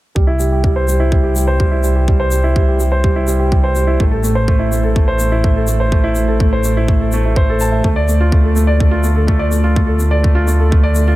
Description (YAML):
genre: piano and strings electronica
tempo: 125 BPM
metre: 4/4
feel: straight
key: unclear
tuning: A4 = 440 Hz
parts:
  - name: warm baby grand piano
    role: riff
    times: 0.2-11.2 s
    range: G3 to A5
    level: -17 LUFS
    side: right 1 dB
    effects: low-pass filter, digital delay, shimmer reverb
  - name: dark detuned saw bass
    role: bass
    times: 0.2-11.2 s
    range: A1 to D2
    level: -15 LUFS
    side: equal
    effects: sidechain pumping
  - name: electronic kick drum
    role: drums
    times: 0.2-10.8 s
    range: none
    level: -14 LUFS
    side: equal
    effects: none
  - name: shaker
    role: drums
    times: 0.4-11.1 s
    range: none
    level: -28 LUFS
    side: left 3 dB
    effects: none
room: small room ambience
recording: none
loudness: -12 LUFS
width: side -16 dB against mid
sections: 0.2-11.2 A section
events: none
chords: 0.2 C; 4.0 Am; 7.8 Dm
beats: | 0.16 0.64 1.12 1.60 | 2.08 2.56 3.04 3.52 | 4.00 4.48 4.96 5.44 | 5.92 6.40 6.88 7.36 | 7.84 8.32 8.80 9.28 | 9.76 10.24 10.72